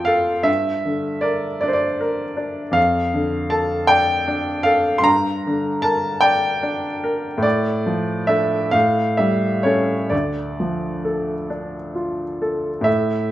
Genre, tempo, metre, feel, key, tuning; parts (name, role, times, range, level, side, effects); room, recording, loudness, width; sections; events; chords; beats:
classical, romantic nocturne for solo piano; 42-53 BPM (dotted quarters); 6/8; rubato; D minor; A4 = 440 Hz
bright upright piano; solo; 0.0-13.3 s; D2 to C6; -18 LUFS; equal
moderate recital hall reverb, RT60 1.6 s; close, detailed microphones; -18 LUFS; side -14 dB against mid
0.0-12.9 A section
0.5 Gm; 2.8 Dm/F; 5.0 Gm; 7.4 Dm/A; 8.7 A7; 10.1 Dm
| 0.47 1.62 | 2.77 3.90 | 5.05 6.24 | 7.44 8.74 | 10.12 11.49 | 12.87